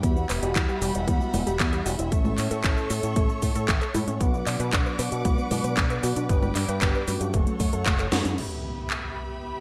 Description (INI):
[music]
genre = italo disco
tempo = 115 BPM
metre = 4/4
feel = straight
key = unclear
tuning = A4 = 436 Hz
[part]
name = rich studio string section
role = sustained chords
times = 0.0-9.6 s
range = G3 to D6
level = -36 LUFS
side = equal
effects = none
[part]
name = warbly dusty pluck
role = arpeggios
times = 0.0-8.4 s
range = A3 to D5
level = -34 LUFS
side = equal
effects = chorus, digital delay
[part]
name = mellow synth brass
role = stabs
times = 0.0-9.6 s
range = G2 to B4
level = -35 LUFS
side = equal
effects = chorus, cassette tape, digital delay
[part]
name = fingered electric bass with an envelope filter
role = bass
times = 0.0-8.4 s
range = E1 to B2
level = -32 LUFS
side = equal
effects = none
[part]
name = electronic kick drum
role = drums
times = 0.0-8.0 s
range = none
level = -28 LUFS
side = equal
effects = none
[part]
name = house drum kit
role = drums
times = 0.0-9.0 s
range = cabasa, congas, crash cymbal, handclaps, hi-hat, snare drum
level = -31 LUFS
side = equal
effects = gated reverb
[part]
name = impact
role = sound effects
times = 8.4-9.6 s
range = none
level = -37 LUFS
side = equal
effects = none
[sound]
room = moderate plate reverb, RT60 1.2 s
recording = bright 1980s-style digital production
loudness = -25 LUFS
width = mono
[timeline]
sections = 0.0-8.4 A section; 8.4-9.6 B section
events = drum fill 8.1; band accent 8.1; impact 8.4-9.6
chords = 0.0 Emadd9; 2.1 A; 4.2 Bm; 6.3 G; 7.3 F#m; 8.4 Em/B